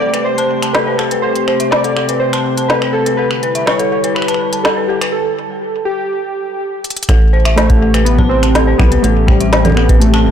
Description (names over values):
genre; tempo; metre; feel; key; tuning
IDM; 123 BPM; 4/4; straight; A minor; A4 = 440 Hz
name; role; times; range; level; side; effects
warbly lo-fi synth keys; melody; 0.0-10.3 s; G3 to D5; -17 LUFS; right 1 dB; chorus, tape echo
warbly tape-like pad; sustained chords; 0.0-10.3 s; C3 to G4; -20 LUFS; left 2 dB; chorus, built-in reverb
dark detuned synth bell; arpeggios; 0.0-10.2 s; A4 to A5; -20 LUFS; left 4 dB; chorus, digital delay
twinkling granular texture; texture; 0.0-5.1 s; G3 to G5; -34 LUFS; right 2 dB; none
organic electronic drum kit; drums; 0.1-10.2 s; congas, finger snaps, hi-hat, snare drum; -18 LUFS; right 1 dB; overdrive, soft clipping on snare, small room ambience, ping-pong delay
rubbery square bass; bass; 7.1-10.3 s; E1 to C2; -13 LUFS; equal; none
electronic kick drum; drums; 7.1-10.0 s; none; -12 LUFS; equal; small room ambience
room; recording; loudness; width
light reverb; blown-out, overdriven recording, overdrive; -11 LUFS; side -9 dB against mid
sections
0.0-7.1 A section; 7.1-10.3 B section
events
break 5.1-7.1; drum fill 6.8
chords
0.0 Am7; 3.2 Em7; 7.1 Am9